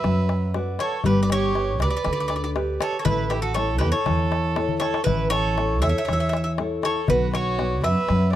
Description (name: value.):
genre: greek folk, Greek bouzouki band.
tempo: 119 BPM.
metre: 4/4.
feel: straight.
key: unclear.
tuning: A4 = 438 Hz.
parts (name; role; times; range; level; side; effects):
Greek bouzouki; melody; 0.0-8.3 s; G4 to E5; -26 LUFS; equal; none.
warm violin; second line; 0.0-8.4 s; E4 to C#5; -28 LUFS; right 7 dB; none.
fingerpicked steel-string acoustic guitar; accompaniment; 0.0-8.4 s; D3 to D5; -26 LUFS; left 2 dB; none.
upright bass; bass; 0.0-8.4 s; G1 to F#2; -25 LUFS; right 1 dB; none.
darbuka; percussion; 0.0-8.4 s; none; -28 LUFS; left 6 dB; none.
room: little or no reverb.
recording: dry, close 1970s-style studio recording.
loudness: -20 LUFS.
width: side -12 dB against mid.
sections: 0.0-8.4 A section.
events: drum fill 4.7-5.1.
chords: 0.0 Bm; 1.0 G; 3.1 A; 7.1 Bm.